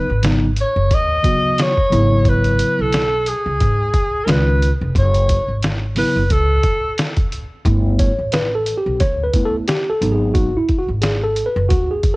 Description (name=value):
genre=hip hop, jazz-hop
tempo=89 BPM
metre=4/4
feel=swing 57% on 16ths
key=unclear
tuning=A4 = 437 Hz
part: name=clear alto saxophone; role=melody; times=0.0-7.0 s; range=G#4 to D#5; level=-19 LUFS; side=equal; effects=analog delay
part: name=tine electric piano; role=accompaniment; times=0.0-12.2 s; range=C#3 to C#5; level=-19 LUFS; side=equal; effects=medium stereo tremolo, cassette tape
part: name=upright bass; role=bass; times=0.1-12.0 s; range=E#1 to G#2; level=-18 LUFS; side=equal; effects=none
part: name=trip hop sampler-style drum kit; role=drums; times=0.2-12.2 s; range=hi-hat, kick drum, snare drum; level=-20 LUFS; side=equal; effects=none
room=studio ambience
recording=home recording on cassette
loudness=-14 LUFS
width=side -23 dB against mid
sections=0.0-7.7 A section; 7.7-12.2 B section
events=tine electric piano solo 7.7-12.2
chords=0.0 G#m7; 1.9 C#m7/G#; 4.3 C#7; 5.0 F#m9; 7.7 G69; 10.0 G#m7